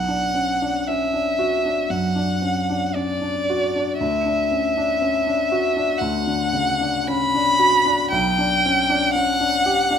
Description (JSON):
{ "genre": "classical, romantic duo for violin and grand piano", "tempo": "54-61 BPM", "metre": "4/4", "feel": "rubato", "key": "B minor", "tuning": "A4 = 438 Hz", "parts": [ { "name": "rich violin", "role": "melody", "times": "0.0-10.0 s", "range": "D5 to B5", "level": "-20 LUFS", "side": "equal", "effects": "none" }, { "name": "clear baby grand piano", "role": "accompaniment", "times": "0.0-10.0 s", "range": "B1 to G4", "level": "-23 LUFS", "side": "left 2 dB", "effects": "none" } ], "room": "wet recital hall reverb, RT60 1.5 s", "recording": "minimal, uncompressed stereo recording", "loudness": "-18 LUFS", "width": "side -8 dB against mid", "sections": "0.0-10.0 A section", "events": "none", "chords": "0.0 Bm; 4.0 Bm/D; 8.1 G/B" }